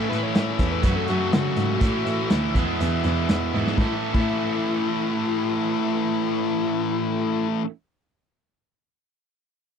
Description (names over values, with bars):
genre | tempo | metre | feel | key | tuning
classic rock | 122 BPM | 4/4 | straight | A major | A4 = 444 Hz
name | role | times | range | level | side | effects
fuzz lead guitar | second line | 0.0-7.5 s | E4 to C#5 | -28 LUFS | left 6 dB | distortion
overdriven electric guitar | riff | 0.0-7.7 s | A2 to F#4 | -27 LUFS | right 16 dB | none
tight distorted guitar | riff | 0.0-7.7 s | E2 to A4 | -27 LUFS | left 14 dB | distortion
dark cello | bass | 0.0-7.5 s | D2 to C#3 | -26 LUFS | equal | none
raw garage drum kit | drums | 0.1-4.3 s | crash cymbal, hi-hat, kick drum, snare drum | -24 LUFS | equal | none
room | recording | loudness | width
light reverb | dry, close 1970s-style studio recording | -21 LUFS | side -7 dB against mid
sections
0.0-3.8 A section; 3.8-7.7 B section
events
drum fill 3.5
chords
0.0 A; 0.8 F#m; 1.8 A; 2.5 E; 3.8 A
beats
0.35 0.83 1.32 | 1.81 2.30 2.79 3.27 | 3.77 4.25 4.75 5.24 | 5.73 6.22 6.71 7.20